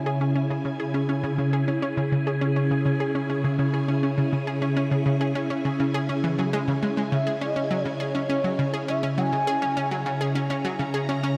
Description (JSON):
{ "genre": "ambient, sequencer-driven space music", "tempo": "102 BPM", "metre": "4/4", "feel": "straight", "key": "C# dorian", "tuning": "A4 = 440 Hz", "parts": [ { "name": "phased string machine", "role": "sustained chords", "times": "0.0-11.4 s", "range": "C#3 to A#5", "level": "-27 LUFS", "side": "equal", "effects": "ensemble chorus, phaser" }, { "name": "analog pluck", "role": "riff", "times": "0.1-11.3 s", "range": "C#3 to G#4", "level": "-30 LUFS", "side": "equal", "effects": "chorus, delay" }, { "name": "expressive portamento lead", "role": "melody", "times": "7.1-10.4 s", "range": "C#5 to G#5", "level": "-31 LUFS", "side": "equal", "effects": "lush chorus, delay" } ], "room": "wet huge ambient reverb, RT60 8.8 s", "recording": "none", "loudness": "-25 LUFS", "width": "mono", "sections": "0.0-11.4 A section", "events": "none", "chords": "0.0 C#m" }